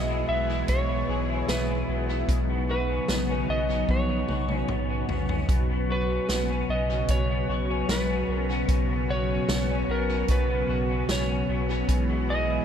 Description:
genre	dream pop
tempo	75 BPM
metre	4/4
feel	straight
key	B major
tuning	A4 = 443 Hz
part	electric slide guitar	melody	0.0-12.6 s	A#4 to E5	-31 LUFS	right 1 dB	tape echo
part	string machine, cellos	sustained chords	0.0-12.6 s	B2 to G#4	-30 LUFS	equal	ensemble chorus
part	electric guitar through a small old amp	arpeggios	0.0-12.6 s	B2 to G#4	-32 LUFS	left 3 dB	ensemble chorus, tape echo
part	warm sub bass	bass	0.0-12.6 s	B1	-29 LUFS	equal	none
part	vintage drum kit	drums	0.7-12.1 s	hi-hat, kick drum, snare drum, toms	-29 LUFS	equal	tape echo
room	light reverb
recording	echo-heavy mix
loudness	-23 LUFS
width	side -8 dB against mid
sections	0.0-5.5 A section; 5.5-12.6 A section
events	drum fill 3.9-5.5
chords	0.0 E/B; 2.3 Badd9; 5.5 Bsus2; 11.9 E/B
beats	0.69 1.49 | 2.29 3.09 3.89 4.69 | 5.49 6.29 7.09 7.89 | 8.69 9.49 10.29 11.09 | 11.89

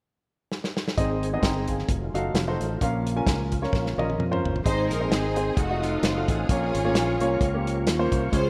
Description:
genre	uptempo gospel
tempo	131 BPM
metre	4/4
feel	swing 55% on 8ths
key	unclear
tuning	A4 = 440 Hz
part	warm soul drum kit	drums	0.5-8.4 s	hi-hat, kick drum, snare drum, toms	-29 LUFS	equal	none
part	clear grand piano	accompaniment	1.0-8.5 s	Ab2 to Bb5	-30 LUFS	equal	none
part	tonewheel organ	sustained chords	1.0-8.5 s	Db3 to Eb6	-37 LUFS	equal	fast rotary speaker, chorus vibrato
part	fingered electric bass	bass	1.0-8.5 s	F1 to F2	-31 LUFS	equal	none
part	warm symphonic string section	melody	4.7-8.5 s	A3 to C5	-31 LUFS	equal	none
part	mellow French horn section	sustained chords	4.7-8.5 s	Eb3 to F4	-33 LUFS	equal	none
room	moderate lush hall reverb, RT60 2.1 s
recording	rough home demo mix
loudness	-25 LUFS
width	mono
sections	1.0-4.7 A section; 4.7-8.5 B section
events	drum fill 0.5-1.0, 3.7-4.7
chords	0.0 N.C.; 1.0 Ab; 1.9 F7b9; 2.8 Bbm; 4.7 Ab; 5.6 F7b9; 6.5 Bbm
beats	0.06 0.52 | 0.98 1.44 1.90 2.35 | 2.81 3.27 3.73 4.19 | 4.65 5.11 5.57 6.03 | 6.49 6.95 7.41 7.87 | 8.32

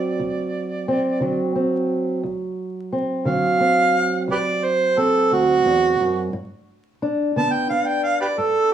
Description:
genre	acoustic country blues, solo or duo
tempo	58 BPM (dotted quarters)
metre	12/8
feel	straight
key	D mixolydian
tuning	A4 = 440 Hz
part	mellow harmonica	melody	0.0-8.7 s	F#4 to A5	-19 LUFS	right 3 dB	plate reverb
part	fingerpicked old ladder-braced acoustic guitar	accompaniment	0.0-8.7 s	D2 to D4	-22 LUFS	equal	none
room	moderate small room reverb, RT60 0.6 s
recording	vinyl crackle, small room ambience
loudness	-18 LUFS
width	side -10 dB against mid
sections	0.0-2.2 A section; 2.2-8.7 B section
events	harmonica solo 2.2-8.7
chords	0.0 D7; 6.3 G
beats	0.17 1.20 | 2.23 3.25 4.28 5.31 | 6.33 7.36 8.38

